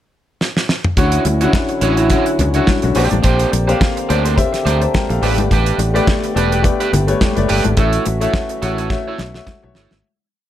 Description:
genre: disco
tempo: 106 BPM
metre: 4/4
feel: swing 56% on 16ths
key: D major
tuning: A4 = 440 Hz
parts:
  - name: damped 70s drum kit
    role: drums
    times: 0.4-10.0 s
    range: hi-hat, kick drum, snare drum, toms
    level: -18 LUFS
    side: equal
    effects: none
  - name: electric guitar at the edge of break-up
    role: accompaniment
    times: 1.0-10.0 s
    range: D4 to C#5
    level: -21 LUFS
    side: right 5 dB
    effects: none
  - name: warm grand piano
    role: accompaniment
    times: 1.0-10.1 s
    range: D3 to Bb5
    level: -20 LUFS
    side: left 6 dB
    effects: none
  - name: warm French horn section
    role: sustained chords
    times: 1.0-10.0 s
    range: D3 to G4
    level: -23 LUFS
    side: right 2 dB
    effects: none
  - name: fingered electric bass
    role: bass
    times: 1.0-10.0 s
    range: E1 to D2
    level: -18 LUFS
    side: equal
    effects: none
  - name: congas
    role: percussion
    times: 1.3-10.0 s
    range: none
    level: -23 LUFS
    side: left 4 dB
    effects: none
room: light reverb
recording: none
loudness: -13 LUFS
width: side -12 dB against mid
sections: 0.0-1.0 pickup bar; 1.0-10.0 verse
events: drum fill 0.4-1.0, 8.9-10.0; fade-out 7.8-10.0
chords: 0.0 N.C.; 1.0 Dmaj9; 3.0 Bb69; 5.2 A9sus4; 7.8 F#m7/A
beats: 0.40 | 0.97 1.54 2.10 2.67 | 3.24 3.81 4.37 4.94 | 5.50 6.07 6.64 7.20 | 7.77 8.34 8.90 9.47

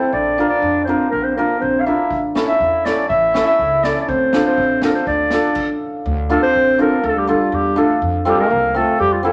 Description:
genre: klezmer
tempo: 122 BPM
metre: 2/4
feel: straight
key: D minor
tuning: A4 = 442 Hz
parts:
  - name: mellow clarinet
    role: melody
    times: 0.0-9.3 s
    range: E4 to F5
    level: -20 LUFS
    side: equal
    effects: none
  - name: warm trombone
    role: second line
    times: 0.0-9.3 s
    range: E3 to E4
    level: -26 LUFS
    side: equal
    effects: none
  - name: upright bass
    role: bass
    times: 0.1-9.3 s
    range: A1 to F2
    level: -30 LUFS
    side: equal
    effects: none
  - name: hammered dulcimer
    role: accompaniment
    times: 0.4-9.3 s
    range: C4 to Bb4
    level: -21 LUFS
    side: equal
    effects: none
  - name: street-band drum kit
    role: drums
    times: 2.1-5.7 s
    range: crash cymbal, kick drum, snare drum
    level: -31 LUFS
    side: equal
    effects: none
room: wet club reverb, RT60 0.8 s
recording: none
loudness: -17 LUFS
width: mono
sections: 0.0-6.1 A section; 6.1-9.3 B section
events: stop 5.6-6.1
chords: 0.1 Bb; 2.1 A; 4.1 Dm; 8.0 F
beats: | 0.14 0.63 | 1.13 1.62 | 2.11 2.61 | 3.10 3.59 | 4.09 4.58 | 5.07 5.56 | 6.05 6.54 | 7.04 7.53 | 8.02 8.50 | 8.99

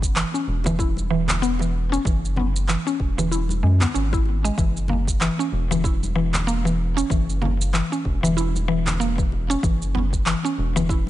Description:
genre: organic downtempo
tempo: 95 BPM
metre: 4/4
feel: swing 58% on 16ths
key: F# mixolydian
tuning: A4 = 440 Hz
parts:
  - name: round analog bass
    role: bass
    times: 0.0-11.1 s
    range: E1 to F#2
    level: -23 LUFS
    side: equal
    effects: sidechain pumping
  - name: electronic kick drum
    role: drums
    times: 0.0-11.0 s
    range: none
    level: -24 LUFS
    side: equal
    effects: overdrive
  - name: electronic shaker and handclaps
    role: drums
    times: 0.0-11.0 s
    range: none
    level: -28 LUFS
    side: right 1 dB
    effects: overdrive
  - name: mallet-like synth pluck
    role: arpeggios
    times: 0.2-11.1 s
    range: E3 to E4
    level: -24 LUFS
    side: equal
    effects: chorus, digital delay
  - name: bongos and congas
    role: percussion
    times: 0.6-11.1 s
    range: none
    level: -32 LUFS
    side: left 1 dB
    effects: none
room: light reverb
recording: nothing above 10.6 kHz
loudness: -19 LUFS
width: side -14 dB against mid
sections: 0.0-11.1 A section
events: none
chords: 0.0 E; 4.6 F#7(no3); 9.6 N.C.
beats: 0.16 0.79 1.42 | 2.05 2.68 3.31 3.95 | 4.58 5.21 5.84 6.47 | 7.10 7.74 8.37 9.00 | 9.63 10.26 10.89

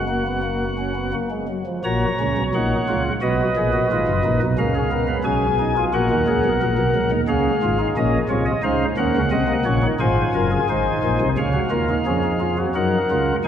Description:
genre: classical, baroque-style 4-part fugue for pipe organ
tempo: 88 BPM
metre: 4/4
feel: straight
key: F# major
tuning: A4 = 444 Hz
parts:
  - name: pipe organ, flutes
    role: solo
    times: 0.0-13.5 s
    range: F#1 to A#5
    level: -18 LUFS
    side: equal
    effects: none
room: wet church reverb, RT60 3.8 s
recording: none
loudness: -18 LUFS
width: side -9 dB against mid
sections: 0.0-1.8 A section; 1.8-12.8 B section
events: none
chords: 0.0 F#; 1.8 F#/A#; 3.2 G#m7; 4.6 C#7; 5.9 F#/A#; 7.3 C#; 8.7 D#m7/C#; 10.0 G#7; 11.4 C#; 12.8 F#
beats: 0.43 1.13 | 1.83 2.53 3.21 3.89 | 4.58 5.26 5.94 6.62 | 7.30 7.97 8.65 9.33 | 10.01 10.70 11.38 12.07 | 12.77 13.46

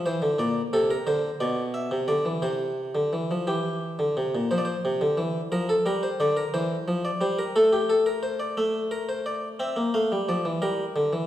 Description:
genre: classical, baroque-style two-part invention for harpsichord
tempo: 59 BPM (dotted quarters)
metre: 6/8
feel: straight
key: F major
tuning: A4 = 440 Hz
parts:
  - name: harpsichord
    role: solo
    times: 0.0-11.3 s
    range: Bb2 to F5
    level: -23 LUFS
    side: equal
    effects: none
room: wet recital hall reverb, RT60 1.7 s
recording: recorded in a church or concert hall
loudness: -23 LUFS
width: side -12 dB against mid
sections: 0.0-4.5 A section; 4.5-8.6 B section; 8.6-11.3 A section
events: none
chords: 0.4 Bbmaj9; 1.4 Bmadd11; 2.5 Csus4; 3.5 C/E; 4.5 F5; 5.5 Gm7/F; 6.5 C/E; 7.6 Amadd11; 8.6 Am; 9.6 Dm7; 10.6 Gm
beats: | 0.40 1.42 | 2.45 3.48 | 4.51 5.53 | 6.54 7.56 | 8.57 9.59 | 10.61

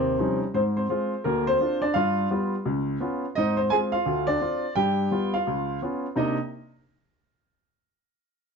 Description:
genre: jazz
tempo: 171 BPM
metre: 4/4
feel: swing 62% on 8ths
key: C minor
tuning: A4 = 443 Hz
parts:
  - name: warm upright piano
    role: solo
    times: 0.0-6.4 s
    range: Db2 to Ab5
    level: -23 LUFS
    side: equal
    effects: none
room: wet studio reverb, RT60 0.8 s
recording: nothing above 7.7 kHz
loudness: -23 LUFS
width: side -5 dB against mid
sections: 0.5-6.2 A section; 6.2-7.6 B section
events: none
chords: 0.0 Eb9; 0.5 Ab6; 1.2 Bbadd9/D; 2.0 G7; 2.7 Db7; 3.4 Ab6; 4.1 Dm7; 4.8 G7; 5.5 Db7; 6.2 Cm9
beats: 0.19 | 0.55 0.90 1.25 1.60 | 1.95 2.30 2.65 3.01 | 3.36 3.71 4.06 4.41 | 4.76 5.12 5.47 5.82 | 6.17

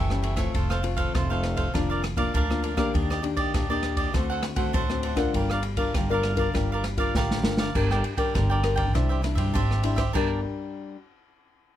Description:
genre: samba and choro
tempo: 100 BPM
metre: 4/4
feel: straight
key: G minor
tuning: A4 = 440 Hz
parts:
  - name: cavaquinho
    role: accompaniment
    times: 0.0-10.4 s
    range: D4 to G5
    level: -30 LUFS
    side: right 3 dB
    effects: none
  - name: nylon-string guitar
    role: accompaniment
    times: 0.0-11.0 s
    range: A2 to Bb4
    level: -29 LUFS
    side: left 5 dB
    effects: none
  - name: upright bass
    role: bass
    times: 0.0-10.4 s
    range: F1 to G2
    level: -28 LUFS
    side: equal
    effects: none
  - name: open jazz drum kit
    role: drums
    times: 0.1-10.3 s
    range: crash cymbal, kick drum, ride cymbal, rim click, snare drum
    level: -28 LUFS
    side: equal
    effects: none
room: little or no reverb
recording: close, detailed microphones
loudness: -23 LUFS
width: side -12 dB against mid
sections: 0.0-7.8 A section; 7.8-10.2 B section; 10.2-11.8 C section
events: drum fill 7.1-7.8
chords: 0.0 A7; 0.5 F; 1.7 Bb/F; 2.9 Ebmaj7; 4.1 D7; 5.3 Gm7; 7.8 Gm; 9.0 Cadd9; 10.2 Gm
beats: | 0.54 1.14 1.74 2.34 | 2.94 3.54 4.14 4.74 | 5.34 5.95 6.55 7.15 | 7.75 8.35 8.95 9.55 | 10.15 10.76

